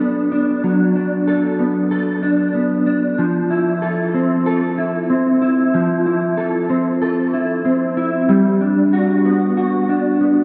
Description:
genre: dream pop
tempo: 94 BPM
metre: 4/4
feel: straight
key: unclear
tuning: A4 = 439 Hz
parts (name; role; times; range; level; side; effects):
- mellow electric guitar; solo; 0.0-10.4 s; F3 to A4; -17 LUFS; equal; ensemble chorus, tape echo
room: wet lush hall reverb, RT60 2.9 s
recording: dreamy mix soaked in reverb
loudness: -17 LUFS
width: mono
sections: 0.0-10.4 A section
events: none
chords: 0.0 D6/F#; 3.2 Fmaj7; 8.3 Gmaj7

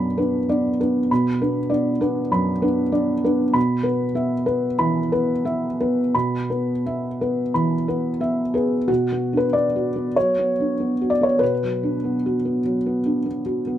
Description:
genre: neoclassical minimalist piano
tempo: 84-100 BPM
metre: 4/4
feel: rubato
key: B minor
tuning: A4 = 440 Hz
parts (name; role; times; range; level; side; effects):
- felt-muted upright piano; solo; 0.0-13.8 s; F#2 to B5; -19 LUFS; equal; none
room: light reverb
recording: none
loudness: -19 LUFS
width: side -11 dB against mid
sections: 0.0-8.9 A section; 8.9-13.8 B section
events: none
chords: 0.0 Bm; 3.6 E5/B; 8.9 Bm

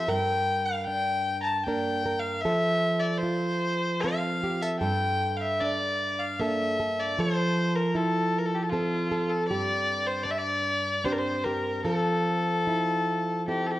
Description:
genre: celtic folk, Celtic slow air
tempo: 77 BPM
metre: 3/4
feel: rubato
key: unclear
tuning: A4 = 437 Hz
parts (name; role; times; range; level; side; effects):
- rich fiddle; melody; 0.0-13.8 s; F4 to Bb5; -27 LUFS; left 1 dB; none
- nylon-string guitar; accompaniment; 0.0-13.8 s; G2 to Bb4; -28 LUFS; right 1 dB; none
room: moderate scoring stage reverb, RT60 1.9 s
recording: worn, warbling old tape, cassette tape, warbly pitch drift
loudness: -25 LUFS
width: side -15 dB against mid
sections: 0.0-13.8 A section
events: none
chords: 0.1 Gm; 2.4 F; 4.8 Gmadd9; 7.2 Fmaj7; 9.5 Csus2/G; 11.8 Fmaj7

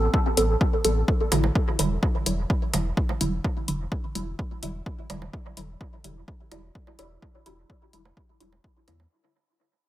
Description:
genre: dub techno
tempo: 127 BPM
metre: 4/4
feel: straight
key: unclear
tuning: A4 = 440 Hz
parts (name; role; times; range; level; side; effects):
- filtered dub chord stab; stabs; 0.0-9.0 s; D3 to A4; -27 LUFS; right 2 dB; phaser, cassette tape, sidechain pumping, dub echo
- warm sub bass; bass; 0.0-9.1 s; E1 to E2; -28 LUFS; equal; tube saturation, sidechain pumping
- electronic kick drum; drums; 0.1-8.7 s; none; -25 LUFS; equal; overdrive
- electronic hi-hat; drums; 0.4-9.0 s; none; -28 LUFS; left 3 dB; overdrive
- bongos; percussion; 1.3-9.1 s; none; -38 LUFS; right 5 dB; sidechain pumping on perc, dub echo
room: light reverb, digital ambience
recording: echo-heavy mix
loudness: -23 LUFS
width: side -14 dB against mid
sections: 0.0-9.1 A section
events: fade-out 0.0-9.1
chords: 0.0 Am9; 1.6 Em9

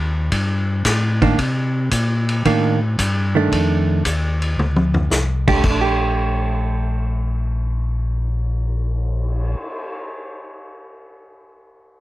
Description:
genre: soul jazz organ trio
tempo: 113 BPM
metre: 4/4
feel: swing 69% on 8ths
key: Bb major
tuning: A4 = 437 Hz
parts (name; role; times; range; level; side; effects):
- mellow tonewheel organ; bass; 0.0-9.6 s; Bb1 to C3; -19 LUFS; left 1 dB; overdrive, slow rotary speaker
- vintage drum kit; drums; 0.3-9.8 s; crash cymbal, cymbal swell, hi-hat, kick drum, ride cymbal, snare drum, toms; -23 LUFS; left 1 dB; none
- hollow-body jazz guitar; accompaniment; 1.2-9.8 s; Eb3 to G4; -19 LUFS; right 4 dB; none
room: little or no reverb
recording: close, detailed microphones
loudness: -17 LUFS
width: side -16 dB against mid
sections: 0.0-5.6 A section; 5.6-9.9 B section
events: drum fill 4.6-5.1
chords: 0.0 F9 (rootless); 1.4 Cm9; 3.5 F13; 5.6 Bb6

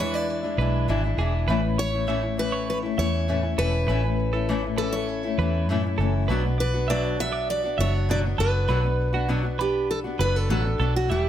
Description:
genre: acoustic pop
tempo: 100 BPM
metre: 4/4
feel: straight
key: unclear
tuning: A4 = 442 Hz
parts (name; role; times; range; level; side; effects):
- picked steel-string acoustic guitar; melody; 0.0-11.3 s; F#4 to E5; -28 LUFS; equal; ping-pong delay
- fingerpicked steel-string acoustic guitar; accompaniment; 0.0-11.3 s; E2 to F#4; -28 LUFS; left 4 dB; none
- twelve-string electric guitar; arpeggios; 0.0-11.3 s; F#4 to E5; -33 LUFS; right 7 dB; none
- vintage muted fingered electric bass; bass; 0.0-11.3 s; E1 to F#2; -25 LUFS; equal; none
room: studio ambience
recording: none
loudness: -22 LUFS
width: side -10 dB against mid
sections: 0.0-11.1 A section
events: none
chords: 0.0 E7; 1.5 A; 6.3 Bm

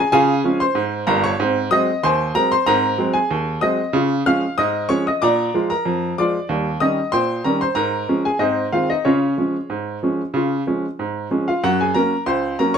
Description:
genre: ragtime piano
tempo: 94 BPM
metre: 2/4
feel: straight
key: Db major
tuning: A4 = 440 Hz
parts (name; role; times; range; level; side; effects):
- bright upright piano; solo; 0.0-12.8 s; G1 to F6; -17 LUFS; equal; none
room: moderate studio reverb, RT60 0.6 s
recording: none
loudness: -17 LUFS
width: side -7 dB against mid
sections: 0.0-11.6 A section; 11.6-12.8 B section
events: none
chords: 0.0 Db; 1.4 Ab7; 3.9 Db; 5.2 Bb7; 6.5 Eb7; 7.8 Db/Ab; 8.4 Ab; 9.0 Db; 11.6 Gb

